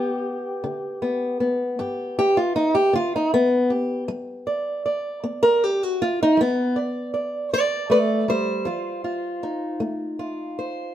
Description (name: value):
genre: acoustic country blues, solo or duo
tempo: 52 BPM (dotted quarters)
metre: 12/8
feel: straight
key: unclear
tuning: A4 = 439 Hz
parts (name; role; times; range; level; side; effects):
- fingerpicked old ladder-braced acoustic guitar; solo; 0.0-10.9 s; G2 to D5; -21 LUFS; equal; none
room: moderate stone room reverb, RT60 0.9 s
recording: band playing live in one room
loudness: -20 LUFS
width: side -11 dB against mid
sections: 0.0-10.9 A section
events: steel-string acoustic guitar solo 0.0-10.9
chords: 0.0 G; 8.7 F7